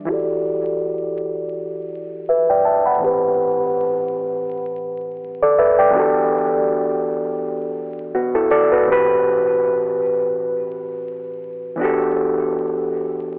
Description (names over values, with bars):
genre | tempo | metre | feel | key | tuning
hip hop | 82 BPM | 4/4 | swing 57% on 16ths | E minor | A4 = 441 Hz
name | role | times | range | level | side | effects
overdriven reed electric piano | solo | 0.0-13.4 s | A2 to B5 | -20 LUFS | equal | cassette tape, low-pass filter, tape echo
room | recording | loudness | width
moderate spring reverb, RT60 1.2 s | vinyl crackle, telephone sound | -19 LUFS | mono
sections
0.1-11.8 A section; 11.8-13.4 B section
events
filter sweep on reed electric piano 0.1-11.8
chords
0.1 Em11; 3.0 Am9; 5.9 Em11; 8.9 Am9; 11.8 Em11